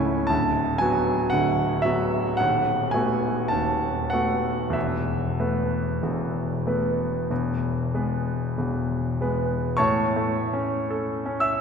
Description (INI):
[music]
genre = classical, romantic nocturne for solo piano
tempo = 47-59 BPM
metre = 4/4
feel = rubato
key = unclear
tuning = A4 = 440 Hz
[part]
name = bright concert grand piano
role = solo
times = 0.0-11.6 s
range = C#1 to E6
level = -22 LUFS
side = equal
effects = none
[sound]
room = wet church reverb, RT60 3.6 s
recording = minimal, uncompressed stereo recording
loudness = -22 LUFS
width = side -6 dB against mid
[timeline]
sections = 0.0-9.8 A section; 9.8-11.6 B section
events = none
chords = 0.3 Bm/D; 2.4 B7/D#; 4.7 Esus4; 7.3 E; 9.8 A